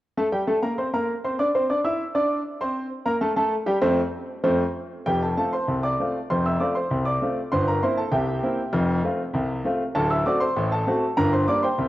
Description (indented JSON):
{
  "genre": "ragtime piano",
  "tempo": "98 BPM",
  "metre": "2/4",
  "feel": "straight",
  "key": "F major",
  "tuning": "A4 = 440 Hz",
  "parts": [
    { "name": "clear concert grand piano", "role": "solo", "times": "0.2-11.9 s", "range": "D1 to E6", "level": "-21 LUFS", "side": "equal", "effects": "cassette tape" }
  ],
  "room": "moderate lush hall reverb, RT60 2.4 s",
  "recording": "home recording on cassette",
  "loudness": "-21 LUFS",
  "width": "side -15 dB against mid",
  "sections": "0.2-5.1 A section; 5.1-11.9 B section",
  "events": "none",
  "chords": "0.2 F (rootless); 5.1 F; 7.5 C7/G; 8.7 F; 10.0 D7; 11.2 Gm"
}